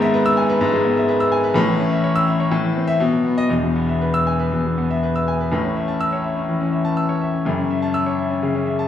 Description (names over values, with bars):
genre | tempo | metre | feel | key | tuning
classical, virtuoso piano study | 122 BPM | 4/4 | uneven beats, rubato | E major, A major from 5.5 s | A4 = 439 Hz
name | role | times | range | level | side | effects
clear concert grand piano | solo | 0.0-8.9 s | E1 to E6 | -17 LUFS | left 1 dB | none
room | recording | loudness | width
wet recital hall reverb, RT60 1.4 s | small room ambience | -17 LUFS | side -10 dB against mid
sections
0.0-5.5 A section; 5.5-8.9 B section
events
none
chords
0.0 E/G#; 1.6 A; 2.5 Am; 3.0 B; 3.5 E; 5.5 A; 7.4 F#m7